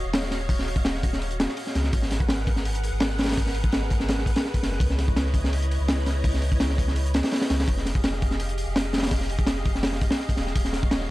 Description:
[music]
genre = drum and bass, jungle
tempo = 167 BPM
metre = 4/4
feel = straight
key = F phrygian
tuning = A4 = 439 Hz
[part]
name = soft string machine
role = sustained chords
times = 0.0-11.1 s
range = Fb4 to Gb5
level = -33 LUFS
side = equal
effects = ensemble chorus
[part]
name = soft dub sub bass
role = bass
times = 0.0-11.1 s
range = Eb1 to Db2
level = -27 LUFS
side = equal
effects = tube saturation
[part]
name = crunchy breakbeat drum kit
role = drums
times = 0.1-11.1 s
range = hi-hat, kick drum, snare drum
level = -24 LUFS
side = equal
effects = none
[sound]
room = studio reverb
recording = dry, gritty hardware recording, transformer saturation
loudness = -22 LUFS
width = side -17 dB against mid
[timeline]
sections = 0.0-7.7 A section; 7.7-11.1 A section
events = drop 0.0-7.7, 7.7-11.1; kick drops out 7.0-7.7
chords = 0.0 Ebm9; 1.9 Abm9; 4.8 Dbm9; 7.7 Fm9; 10.6 Ebm9

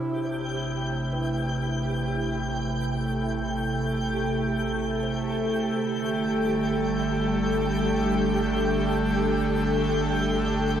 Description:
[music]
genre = ambient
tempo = 61 BPM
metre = 3/4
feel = straight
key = A minor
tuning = A4 = 442 Hz
[part]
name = airy breathy pad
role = sustained chords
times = 0.0-10.8 s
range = C3 to A4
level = -25 LUFS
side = equal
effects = chorus
[part]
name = kalimba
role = arpeggios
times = 0.0-6.2 s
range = F#4 to C5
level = -45 LUFS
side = left 2 dB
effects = none
[part]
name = warm sub bass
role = bass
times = 0.0-10.8 s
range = G1 to A1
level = -35 LUFS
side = equal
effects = none
[part]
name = twinkling granular texture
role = texture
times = 0.1-10.8 s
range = G4 to G6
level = -30 LUFS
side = right 1 dB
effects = built-in reverb
[sound]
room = wet plate reverb, RT60 2.3 s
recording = echo-heavy mix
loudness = -24 LUFS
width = side -9 dB against mid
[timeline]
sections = 0.0-10.8 A section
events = fade-in on sub bass 0.0-10.8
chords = 0.0 Amadd9; 5.7 Gsus2

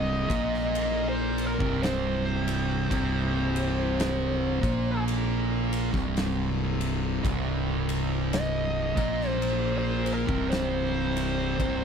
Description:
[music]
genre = stoner and doom metal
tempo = 55 BPM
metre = 4/4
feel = swing 59% on 8ths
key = C minor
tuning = A4 = 440 Hz
[part]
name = fuzz lead guitar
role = melody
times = 0.0-11.8 s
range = Bb4 to Eb5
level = -31 LUFS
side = equal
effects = wah, distortion, slapback echo
[part]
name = thick fuzz guitar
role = riff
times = 0.0-11.8 s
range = C2 to Bb3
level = -32 LUFS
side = left 14 dB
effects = distortion
[part]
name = thick fuzz guitar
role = riff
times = 0.0-11.8 s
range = C2 to Bb3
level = -30 LUFS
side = right 12 dB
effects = distortion
[part]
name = fuzz fingered electric bass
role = bass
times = 0.0-11.8 s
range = C1 to Bb1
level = -31 LUFS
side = left 1 dB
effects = overdrive, tube saturation
[part]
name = oversized low-tuned drum kit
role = drums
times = 0.3-11.8 s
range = kick drum, ride cymbal, snare drum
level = -33 LUFS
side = left 1 dB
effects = none
[sound]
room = little or no reverb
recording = none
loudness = -25 LUFS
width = side -7 dB against mid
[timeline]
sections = 0.0-11.8 A section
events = lead electric guitar solo 0.0-11.8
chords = 0.0 Cm

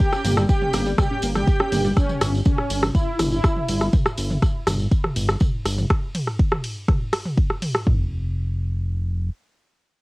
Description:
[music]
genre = melodic techno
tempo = 122 BPM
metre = 4/4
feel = straight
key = unclear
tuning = A4 = 444 Hz
[part]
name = mellow synth brass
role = melody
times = 0.0-3.8 s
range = Db4 to G4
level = -26 LUFS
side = equal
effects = chorus, phaser, sidechain pumping, cassette tape, tape echo
[part]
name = airy dreamy lead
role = second line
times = 0.0-1.9 s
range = G5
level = -31 LUFS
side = equal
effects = chorus, sidechain pumping, cassette tape, tape echo
[part]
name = wide unison pluck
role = arpeggios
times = 0.0-1.9 s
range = G3 to G4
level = -28 LUFS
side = equal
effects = sidechain pumping, cassette tape, tape echo
[part]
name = deep house drum kit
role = drums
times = 0.0-8.0 s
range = kick drum, toms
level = -19 LUFS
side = equal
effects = cassette tape
[part]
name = deep house drum kit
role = drums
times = 0.0-7.8 s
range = hi-hat, ride cymbal, rim click, toms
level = -25 LUFS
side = equal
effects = cassette tape
[part]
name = tambourine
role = percussion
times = 0.1-5.9 s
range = none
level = -35 LUFS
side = right 1 dB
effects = none
[part]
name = fat analog bass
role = bass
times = 0.2-9.3 s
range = F1 to G1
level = -23 LUFS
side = equal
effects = sidechain pumping
[sound]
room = light reverb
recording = home recording on cassette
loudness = -19 LUFS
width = side -22 dB against mid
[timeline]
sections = 0.0-7.9 A section; 7.9-10.0 B section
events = drop 0.0-7.9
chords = none

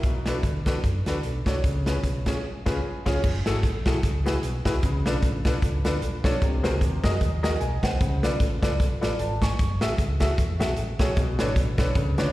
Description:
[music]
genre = uptempo gospel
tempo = 151 BPM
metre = 4/4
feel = swing 57% on 8ths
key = F# minor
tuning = A4 = 443 Hz
[part]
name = warm upright piano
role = accompaniment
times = 0.0-12.3 s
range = B2 to C#6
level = -28 LUFS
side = left 1 dB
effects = slapback echo
[part]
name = hollow-body short-scale fingered electric bass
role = bass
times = 0.0-12.3 s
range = F#1 to F#2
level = -27 LUFS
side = equal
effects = none
[part]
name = natural country drum kit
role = drums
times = 0.0-12.3 s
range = crash cymbal, hi-hat, kick drum, snare drum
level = -26 LUFS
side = equal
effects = none
[sound]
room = light reverb, studio reverb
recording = live gig heard through the venue's PA, recital hall reverb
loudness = -22 LUFS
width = side -16 dB against mid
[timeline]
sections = 0.0-3.2 A section; 3.2-12.3 B section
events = band accent 2.4-3.2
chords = 0.0 Bm7; 1.6 C#7; 3.2 F#m9; 4.8 C#7b9b13; 6.4 G#9/B#; 8.0 C#7b9b13; 9.6 F#m9; 11.2 Bm9

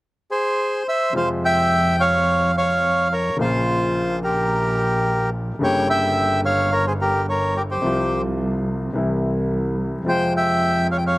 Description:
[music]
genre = tango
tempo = 108 BPM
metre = 4/4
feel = rubato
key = F harmonic minor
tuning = A4 = 440 Hz
[part]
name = bandoneon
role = melody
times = 0.3-11.2 s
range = F4 to G5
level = -19 LUFS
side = equal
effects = none
[part]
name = clear concert grand piano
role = accompaniment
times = 1.1-11.2 s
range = G1 to G4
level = -25 LUFS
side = left 1 dB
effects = none
[part]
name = dark double bass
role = bass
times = 1.1-11.2 s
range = G1 to F2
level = -25 LUFS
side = right 1 dB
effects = none
[sound]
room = little or no reverb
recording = recorded outdoors, with no room sound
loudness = -18 LUFS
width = side -18 dB against mid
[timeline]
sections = 0.0-1.1 A section; 1.1-11.2 B section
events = none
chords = 0.0 Abaug; 1.1 Fm; 3.4 Bbm; 5.6 Gdim; 7.8 Csus4; 8.9 C; 10.1 Fm

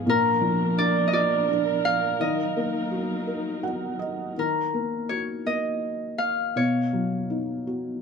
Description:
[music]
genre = children's music, lullaby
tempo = 55 BPM (dotted quarters)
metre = 6/8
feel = rubato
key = Eb minor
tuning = A4 = 441 Hz
[part]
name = Celtic harp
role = melody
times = 0.0-8.0 s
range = Bb4 to Ab5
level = -25 LUFS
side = right 1 dB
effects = plate reverb
[part]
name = felt-muted upright piano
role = accompaniment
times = 0.0-8.0 s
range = Bb2 to Gb5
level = -27 LUFS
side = left 1 dB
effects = none
[part]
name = dark studio string section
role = sustained chords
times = 0.0-4.3 s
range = F3 to Bb4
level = -32 LUFS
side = right 1 dB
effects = none
[sound]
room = moderate small room reverb, RT60 0.5 s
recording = none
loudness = -23 LUFS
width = side -6 dB against mid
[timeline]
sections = 0.0-4.4 A section; 4.4-8.0 B section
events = felt piano fill 3.3-4.4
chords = 0.1 Bb; 2.2 Ebm; 6.6 Badd9

